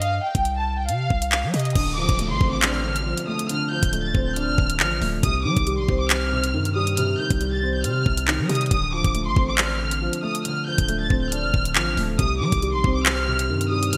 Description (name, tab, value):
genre	hip hop, drill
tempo	138 BPM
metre	4/4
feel	half-time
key	D phrygian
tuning	A4 = 438 Hz
part	warm studio violin section	melody	0.0-14.0 s	Eb5 to A6	-28 LUFS	equal	low-pass filter
part	long sustained 808-style bass	bass	0.0-14.0 s	D1 to G3	-28 LUFS	equal	none
part	drill drum kit	drums	0.0-14.0 s	crash cymbal, handclaps, hi-hat, kick drum	-25 LUFS	equal	overdrive, gated reverb
part	dark concert grand piano	accompaniment	1.8-14.0 s	C3 to C5	-29 LUFS	equal	analog chorus, low-pass filter
part	downlifter	sound effects	1.8-5.2 s	none	-39 LUFS	equal	none
room	moderate lush hall reverb, RT60 1.7 s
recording	bright 1980s-style digital production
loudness	-22 LUFS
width	mono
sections	0.0-1.8 A section; 1.8-14.0 B section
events	none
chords	0.0 C5; 1.8 Dm7; 5.2 Cm; 8.7 Dm7; 12.2 Cm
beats	| 0.02 0.45 0.89 1.32 | 1.75 2.19 2.62 3.06 | 3.49 3.93 4.36 4.80 | 5.23 5.67 6.10 6.54 | 6.97 7.41 7.84 8.28 | 8.71 9.15 9.58 10.02 | 10.45 10.89 11.32 11.76 | 12.19 12.62 13.06 13.49 | 13.93